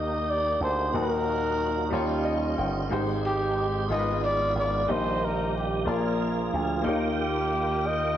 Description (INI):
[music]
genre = slow gospel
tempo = 61 BPM (dotted quarters)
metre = 6/8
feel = straight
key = Eb major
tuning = A4 = 437 Hz
[part]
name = breathy trumpet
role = melody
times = 0.0-8.2 s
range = G4 to Eb5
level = -28 LUFS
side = left 1 dB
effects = none
[part]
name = clear grand piano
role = accompaniment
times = 0.0-8.2 s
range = Ab2 to G5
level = -31 LUFS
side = left 3 dB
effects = none
[part]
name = tonewheel organ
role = sustained chords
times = 0.0-8.2 s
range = Eb3 to G5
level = -31 LUFS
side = right 4 dB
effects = slow rotary speaker, chorus vibrato
[part]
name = slap bass with an envelope filter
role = bass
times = 0.0-8.2 s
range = G1 to Eb2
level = -30 LUFS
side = right 1 dB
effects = none
[sound]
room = moderate recital hall reverb, RT60 1.8 s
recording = none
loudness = -24 LUFS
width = side -11 dB against mid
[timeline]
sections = 0.0-8.2 A section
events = grand piano fill 1.9-2.9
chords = 0.0 Ebmaj7; 0.9 Ebm; 1.9 Eb9; 2.9 Abmaj7; 3.9 Abm6; 4.9 Eb/Bb; 5.9 Bb7; 6.9 Eb